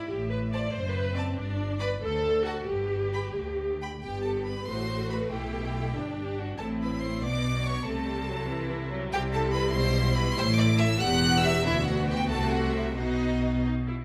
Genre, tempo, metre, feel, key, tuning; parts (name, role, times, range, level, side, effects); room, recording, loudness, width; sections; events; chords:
quick classical-period movement for string orchestra; 88-96 BPM (dotted quarters); 6/8; straight; G major; A4 = 445 Hz
rich chamber violin section; melody; 0.0-13.6 s; B4 to F#6; -36 LUFS; equal
rich symphonic viola section; accompaniment; 0.0-14.0 s; E3 to D5; -33 LUFS; equal
clear chamber cello section; bass; 0.1-14.0 s; D2 to C3; -35 LUFS; equal
rich chamber double bass section; bass; 0.1-14.0 s; E1 to D2; -34 LUFS; equal
rich chamber violin section; second line; 0.5-13.6 s; D#4 to B5; -37 LUFS; equal
wet recital hall reverb, RT60 1.6 s; -28 LUFS; mono
0.0-4.0 A section; 4.0-14.0 B section
0.1 A5; 0.7 N.C.; 1.4 G; 2.0 D7; 2.7 G; 4.7 F#dim/A; 5.3 G/B; 6.6 Am; 7.2 Bmadd9; 7.9 Am/C; 9.1 Cmaj7; 10.4 A5; 11.0 Em; 11.7 Bm/D; 12.3 Am/C; 13.0 B